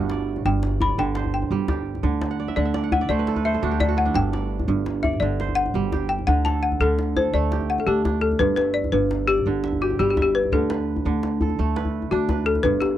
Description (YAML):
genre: west african traditional, West African string and xylophone music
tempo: 113 BPM (dotted quarters)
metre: 12/8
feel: straight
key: G major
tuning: A4 = 440 Hz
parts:
  - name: kora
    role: arpeggios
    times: 0.0-13.0 s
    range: G2 to F#5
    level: -26 LUFS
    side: right 9 dB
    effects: tape echo
  - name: upright bass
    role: bass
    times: 0.0-13.0 s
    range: G1 to D2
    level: -25 LUFS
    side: equal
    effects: none
  - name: djembe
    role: percussion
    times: 0.1-12.9 s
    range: none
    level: -29 LUFS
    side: left 2 dB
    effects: none
  - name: balafon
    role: melody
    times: 0.5-13.0 s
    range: F#4 to B5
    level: -23 LUFS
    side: left 4 dB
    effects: none
room: little or no reverb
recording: dry, close 1970s-style studio recording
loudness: -20 LUFS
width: side -12 dB against mid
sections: 0.0-8.4 A section; 8.4-13.0 B section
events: balafon solo 0.0-8.4; kora fill 2.3-4.2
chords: 0.0 G5; 2.0 D5; 4.2 G5; 6.3 D; 8.4 G; 10.5 D5